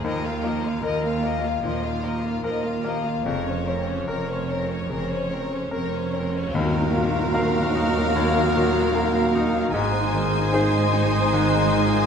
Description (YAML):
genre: cinematic, emotional film score for orchestra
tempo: 75 BPM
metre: 4/4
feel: rubato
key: Eb dorian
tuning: A4 = 437 Hz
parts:
  - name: warm symphonic violin section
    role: melody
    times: 0.0-12.1 s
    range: C5 to Ab5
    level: -30 LUFS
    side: left 4 dB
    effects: none
  - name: clear symphonic violin section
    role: second line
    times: 0.0-12.1 s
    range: F4 to Db5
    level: -32 LUFS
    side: left 1 dB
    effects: none
  - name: bright grand piano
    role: accompaniment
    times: 0.0-12.1 s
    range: Eb2 to F5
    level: -27 LUFS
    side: left 1 dB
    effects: none
  - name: warm symphonic viola section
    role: accompaniment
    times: 0.0-12.1 s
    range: F3 to Gb4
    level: -31 LUFS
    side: right 2 dB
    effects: none
  - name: concert harp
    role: arpeggios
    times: 0.0-12.1 s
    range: Ab2 to Bb5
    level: -31 LUFS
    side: left 7 dB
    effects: none
  - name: dark symphonic cello section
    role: bass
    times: 0.0-12.1 s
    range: Eb2 to Ab2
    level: -29 LUFS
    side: right 4 dB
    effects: none
  - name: rich symphonic double bass section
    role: bass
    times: 0.0-12.1 s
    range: F1 to Eb2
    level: -29 LUFS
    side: right 4 dB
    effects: none
  - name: cymbal swell and tam-tam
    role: percussion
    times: 3.3-9.7 s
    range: none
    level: -32 LUFS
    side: left 3 dB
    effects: none
  - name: large flute ensemble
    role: second line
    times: 6.5-12.1 s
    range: Bb5 to C6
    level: -31 LUFS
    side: equal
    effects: none
  - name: mellow clarinet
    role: second line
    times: 6.5-12.1 s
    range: Gb4 to Ab4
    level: -33 LUFS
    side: left 2 dB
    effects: none
  - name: mellow oboe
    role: second line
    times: 6.5-12.1 s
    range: Eb5 to F5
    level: -32 LUFS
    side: right 3 dB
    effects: none
  - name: dark French horn section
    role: sustained chords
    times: 6.5-12.1 s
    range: Gb3 to Gb4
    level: -29 LUFS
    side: left 4 dB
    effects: none
room: moderate concert hall reverb, RT60 1.9 s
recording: none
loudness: -20 LUFS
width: side -7 dB against mid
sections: 0.0-6.5 A section; 6.5-12.1 B section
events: band accent 6.5-7.3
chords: 0.0 Ebsus2; 3.3 Bbmadd9/F; 6.5 Ebmadd9; 9.7 Ab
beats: | 0.04 0.84 1.63 2.44 | 3.26 4.08 4.91 5.72 | 6.54 7.35 8.15 8.95 | 9.74 10.53 11.32